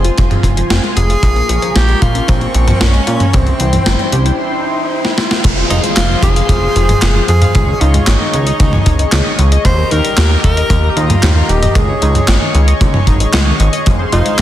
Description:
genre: synthwave.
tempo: 114 BPM.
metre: 4/4.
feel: straight.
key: F minor from 5.4 s.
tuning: A4 = 439 Hz.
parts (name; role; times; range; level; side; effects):
breathy tenor saxophone; melody; 0.0-14.4 s; C4 to C5; -19 LUFS; equal; tape echo, shimmer reverb.
chorused pulse-width pad; sustained chords; 0.0-14.4 s; E4 to Db6; -20 LUFS; left 1 dB; sidechain pumping, shimmer reverb.
analog pluck; arpeggios; 0.0-14.4 s; Eb3 to F5; -22 LUFS; left 2 dB; chorus, digital delay, shimmer reverb.
chorused synth bass; bass; 0.0-14.4 s; Eb1 to Bb2; -13 LUFS; equal; none.
gated 80s digital drum machine; drums; 0.0-14.4 s; crash cymbal, handclaps, hi-hat, snare drum, toms; -16 LUFS; equal; gated reverb, gated reverb snare, overdrive.
kick drum; drums; 0.2-14.0 s; none; -16 LUFS; equal; none.
riser and downlifter; sound effects; 3.5-9.7 s; none; -23 LUFS; equal; none.
room: light reverb, studio reverb.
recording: dense, heavily limited modern master.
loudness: -10 LUFS.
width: side -12 dB against mid.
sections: 0.0-5.4 A section; 5.4-14.4 B section.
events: riser 3.5-5.4; break 4.4-5.4; drum fill 5.0-5.4; band accent 5.3.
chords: 0.0 Fm; 1.2 Bbm7; 3.3 C; 5.4 Fm; 7.5 Dbsus2; 9.7 Eb; 11.8 Dbsus2; 13.9 Fm.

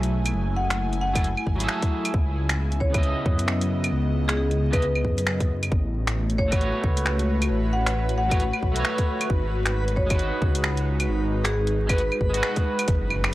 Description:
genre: future garage.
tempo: 134 BPM.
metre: 4/4.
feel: swing 60% on 16ths.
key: unclear.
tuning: A4 = 440 Hz.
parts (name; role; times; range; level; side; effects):
electric guitar at the edge of break-up; accompaniment; 0.0-12.9 s; C#3 to D#5; -31 LUFS; right 2 dB; analog chorus, sidechain pumping, tape echo.
airy breathy pad; sustained chords; 0.0-13.3 s; C#3 to G#5; -30 LUFS; left 1 dB; chorus, vintage 12-bit sampler grit, sidechain pumping.
dark detuned saw bass; bass; 0.0-13.3 s; F#1 to F#2; -25 LUFS; equal; sidechain pumping.
garage drum kit; drums; 0.0-13.3 s; claves, finger snaps, hi-hat; -27 LUFS; equal; none.
marimba with medium hard mallets; melody; 0.6-12.3 s; G#4 to F#5; -30 LUFS; left 1 dB; vintage 12-bit sampler grit, tape echo.
electronic kick drum; drums; 1.2-13.0 s; none; -23 LUFS; equal; none.
backwards swelling texture; texture; 7.6-13.3 s; F#4 to B4; -38 LUFS; right 1 dB; built-in reverb.
impact; sound effects; 13.0-13.3 s; none; -32 LUFS; equal; none.
room: light reverb, digital ambience.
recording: dry, gritty hardware recording, transformer saturation, vinyl crackle.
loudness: -21 LUFS.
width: side -16 dB against mid.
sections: 0.0-12.9 A section.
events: impact 12.9-13.3.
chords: 0.0 F#m9; 2.1 C#m9; 5.7 A69; 9.3 G#m7.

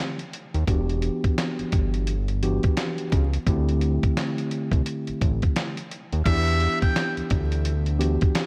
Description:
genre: hip hop, boom-bap hip-hop.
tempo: 86 BPM.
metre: 4/4.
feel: swing 61% on 16ths.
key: E minor.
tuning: A4 = 441 Hz.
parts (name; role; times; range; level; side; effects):
mellow tine electric piano; accompaniment; 0.0-8.5 s; D3 to G4; -30 LUFS; equal; cassette tape.
dusty soul sampler-style drum kit; drums; 0.2-8.5 s; crash cymbal, hi-hat, kick drum, snare drum; -27 LUFS; equal; none.
fat analog bass; bass; 0.5-8.2 s; E1 to E2; -26 LUFS; equal; none.
trumpet with metal mute; melody; 6.3-7.1 s; E5 to G5; -30 LUFS; equal; delay.
room: light reverb, digital ambience.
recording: vinyl crackle.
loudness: -24 LUFS.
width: mono.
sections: 0.0-6.3 A section; 6.3-8.5 B section.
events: none.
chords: 0.0 D7sus4; 0.7 Em7; 3.5 D7sus4; 6.3 Em7.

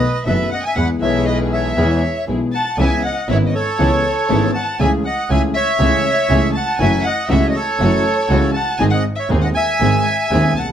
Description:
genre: tango.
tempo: 120 BPM.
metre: 4/4.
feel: rubato.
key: C# minor.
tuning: A4 = 439 Hz.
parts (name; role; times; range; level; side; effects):
bandoneon; melody; 0.0-10.7 s; A4 to A5; -19 LUFS; right 1 dB; none.
dark violin; second line; 0.0-10.7 s; C#5 to A5; -25 LUFS; left 3 dB; none.
warm concert grand piano; accompaniment; 0.3-10.7 s; D#1 to G#4; -20 LUFS; left 2 dB; none.
warm studio string section; stabs; 0.3-10.5 s; A3 to A4; -27 LUFS; left 1 dB; none.
clear double bass; bass; 0.3-10.7 s; F#1 to E2; -19 LUFS; right 1 dB; none.
room: moderate studio reverb, RT60 0.8 s.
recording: none.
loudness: -14 LUFS.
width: side -9 dB against mid.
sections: 0.0-2.8 A section; 2.8-10.7 B section.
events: none.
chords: 0.0 B7; 0.8 E; 2.8 C#m7; 4.8 Amaj7/C#; 6.8 F#m7; 8.8 G#.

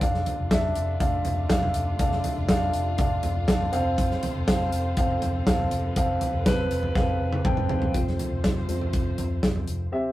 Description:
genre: piano-driven pop.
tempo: 121 BPM.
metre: 4/4.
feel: straight.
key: unclear.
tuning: A4 = 440 Hz.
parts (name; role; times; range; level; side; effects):
dark upright piano; accompaniment; 0.0-10.1 s; C3 to G5; -27 LUFS; equal; none.
warm studio string section; sustained chords; 0.0-9.9 s; F3 to C5; -39 LUFS; left 1 dB; none.
vintage muted fingered electric bass; bass; 0.0-9.9 s; F1 to F2; -29 LUFS; equal; none.
natural country drum kit; drums; 0.0-9.8 s; hi-hat, kick drum, snare drum, toms; -26 LUFS; equal; none.
room: moderate studio reverb, RT60 0.6 s.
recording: rough rehearsal-room recording.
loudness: -22 LUFS.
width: side -15 dB against mid.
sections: 0.0-7.9 A section; 7.9-9.9 B section.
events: drum fill 7.0-7.9; upright piano solo 7.9-9.9.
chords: 0.0 Dm/F; 3.7 F.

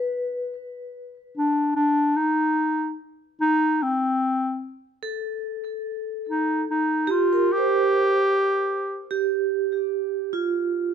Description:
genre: folk.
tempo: 49 BPM (dotted quarters).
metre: 6/8.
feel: straight.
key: unclear.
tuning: A4 = 440 Hz.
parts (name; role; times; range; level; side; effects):
vibraphone with medium hard mallets; arpeggios; 0.0-0.5, 5.0-10.9 s; F4 to C5; -26 LUFS; right 6 dB; analog delay.
warm clarinet; melody; 1.4-9.1 s; C4 to G4; -20 LUFS; left 1 dB; plate reverb.
room: moderate studio reverb, RT60 0.6 s.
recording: close, detailed microphones.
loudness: -21 LUFS.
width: side -7 dB against mid.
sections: 0.0-9.9 A section; 9.9-10.9 B section.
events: none.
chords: 0.0 N.C.; 6.2 Ebadd9; 7.5 C5/G; 8.7 N.C.; 9.9 Fsus2.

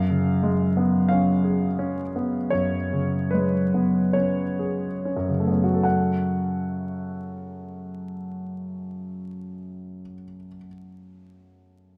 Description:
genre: classical, romantic nocturne for solo piano.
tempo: 33-46 BPM.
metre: 4/4.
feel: rubato.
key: F# minor.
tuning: A4 = 440 Hz.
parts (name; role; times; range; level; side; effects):
warm concert grand piano; solo; 0.0-12.0 s; F#2 to F#5; -25 LUFS; equal; none.
room: moderate recital hall reverb, RT60 1.6 s.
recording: close, detailed microphones, vinyl crackle.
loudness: -24 LUFS.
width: mono.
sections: 0.0-5.8 A section; 5.8-11.8 B section.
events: slowing down 0.0-5.8.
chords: 0.0 C#7/F#; 5.8 F#m.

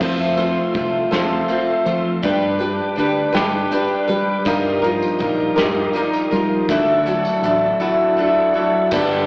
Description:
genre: folk rock and heartland rock.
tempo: 54 BPM (dotted quarters).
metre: 6/8.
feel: straight.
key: unclear.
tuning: A4 = 443 Hz.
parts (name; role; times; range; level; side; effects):
picked twelve-string acoustic guitar; accompaniment; 0.0-9.3 s; D3 to C5; -18 LUFS; equal; slapback echo.
bright tonewheel organ; sustained chords; 0.0-9.3 s; G4 to E6; -30 LUFS; equal; slow rotary speaker, overdrive, chorus vibrato.
electric guitar through a small old amp; riff; 0.0-9.3 s; G2 to A4; -22 LUFS; equal; none.
fingered electric bass; bass; 0.0-9.3 s; G1 to G3; -24 LUFS; equal; none.
soft brush drum kit; drums; 0.0-9.1 s; crash cymbal, hi-hat, kick drum, snare drum; -26 LUFS; equal; none.
tambourine; percussion; 4.5-9.1 s; none; -39 LUFS; right 1 dB; none.
room: light reverb, small room reverb.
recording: live gig heard through the venue's PA, recital hall reverb, AM radio sound.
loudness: -15 LUFS.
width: side -26 dB against mid.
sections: 0.0-8.9 A section.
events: none.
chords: 0.0 F; 2.2 G; 4.5 Ebadd9; 6.7 Dadd9.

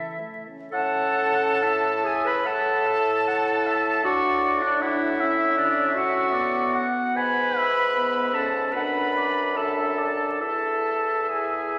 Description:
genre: classical, slow romantic movement for wind quintet.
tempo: 74 BPM.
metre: 4/4.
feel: uneven beats, rubato.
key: A major.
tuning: A4 = 440 Hz.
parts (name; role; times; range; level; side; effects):
silver concert flute; melody; 0.0-11.8 s; D5 to B5; -30 LUFS; equal; none.
warm oboe; second line; 0.0-11.8 s; A4 to G#5; -29 LUFS; equal; none.
clear clarinet; accompaniment; 0.0-11.8 s; D4 to B4; -28 LUFS; equal; none.
warm French horn; accompaniment; 0.0-11.8 s; E3 to E4; -36 LUFS; equal; none.
warm bassoon; bass; 0.7-11.8 s; E2 to A2; -33 LUFS; equal; none.
room: wet concert hall reverb, RT60 2.1 s.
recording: vinyl crackle.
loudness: -23 LUFS.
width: mono.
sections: 0.7-11.8 A section.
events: none.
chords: 0.0 A; 4.0 Bm7/A; 7.2 E/G#; 8.7 D/F#; 10.4 E.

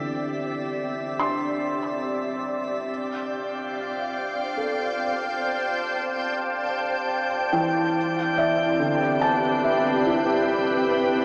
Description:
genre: ambient.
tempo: 71 BPM.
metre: 3/4.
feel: straight.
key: F lydian.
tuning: A4 = 440 Hz.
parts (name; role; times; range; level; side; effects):
soft additive organ-like pad; sustained chords; 0.0-11.2 s; C4 to A5; -28 LUFS; equal; ensemble chorus, built-in reverb, shimmer reverb.
felt-muted upright piano; arpeggios; 0.0-11.2 s; D3 to C6; -29 LUFS; equal; tape echo, shimmer reverb.
drifting glass-harmonics texture; texture; 0.0-11.2 s; E5 to G6; -34 LUFS; equal; chorus, built-in reverb, shimmer reverb.
room: wet huge ambient reverb, RT60 8.1 s.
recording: worn, warbling old tape, cassette tape, warbly pitch drift, small speaker sound.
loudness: -25 LUFS.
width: mono.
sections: 0.0-11.2 A section.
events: fade-in on ambient pad 0.0-11.2; fade-in on felt piano 0.0-11.2; fade-in on synth texture 0.0-11.2.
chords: 0.0 Cadd9; 2.9 F69; 8.0 Cmaj9.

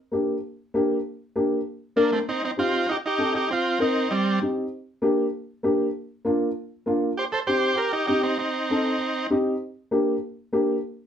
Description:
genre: latin.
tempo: 196 BPM.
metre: 4/4.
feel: straight.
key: unclear.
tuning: A4 = 440 Hz.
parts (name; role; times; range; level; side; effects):
dark upright piano; accompaniment; 0.1-10.7 s; Bb3 to Bb4; -23 LUFS; left 1 dB; none.
combo organ; melody; 2.0-4.4, 7.2-9.3 s; G3 to C5; -23 LUFS; right 2 dB; none.
room: moderate studio ambience, RT60 0.5 s.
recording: band playing live in one room.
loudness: -22 LUFS.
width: side -9 dB against mid.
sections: 0.0-2.3 A section; 2.3-11.1 B section.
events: none.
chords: 0.0 Gm; 2.3 Cm; 4.7 Gm; 5.9 Bb; 7.2 Cm; 9.6 Gm.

